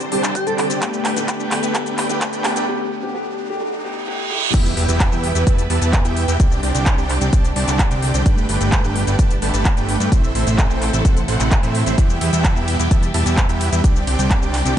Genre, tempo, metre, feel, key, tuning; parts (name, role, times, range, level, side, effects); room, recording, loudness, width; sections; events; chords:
EDM, festival progressive house; 129 BPM; 4/4; straight; E minor; A4 = 440 Hz
warm symphonic string section; sustained chords; 0.0-14.8 s; B2 to C5; -26 LUFS; right 1 dB; sidechain pumping
dense compressed supersaw; riff; 0.0-14.7 s; A3 to A5; -23 LUFS; right 1 dB; sidechain pumping, low-pass filter, tape echo
big-room dance drum kit; drums; 0.0-14.8 s; crash cymbal, handclaps, hi-hat, ride cymbal, shaker; -24 LUFS; equal; overdrive, high-pass filter on toms, high-pass filter on snare, high-pass filter on hats, high-pass filter on perc, high-pass filter on cymbals
riser, reverse cymbal and impact; sound effects; 2.7-6.4 s; -28 LUFS; right 4 dB
airy dreamy lead; melody; 0.1-0.7 s; G4 to A4; -25 LUFS; right 2 dB; chorus, phaser, tape echo
dark concert grand piano; accompaniment; 0.1-4.5 s; D3 to G4; -25 LUFS; left 3 dB; analog chorus, sidechain pumping, tape echo
electronic kick drum; drums; 0.4-14.4 s; -16 LUFS; equal; high-pass filter on kick, high-pass filter on room
fat analog bass; bass; 4.5-14.7 s; G1 to A2; -21 LUFS; equal; sidechain pumping
light reverb; high-pass filter, nothing above 10.3 kHz; -16 LUFS; side -10 dB against mid
0.0-4.5 A section; 4.5-14.8 B section
build-up 0.0-4.5; drum fill 0.0-2.7; filter sweep 0.0-4.5; break 2.7-4.5; riser 2.7-4.5; reverse cymbal 3.6-4.5; drop 4.5-14.8; impact 4.5-6.4
0.0 Csus2; 0.8 Gadd9; 4.5 Em; 6.4 Csus2; 8.3 Gadd9; 10.1 Am; 12.0 Em; 13.8 Csus2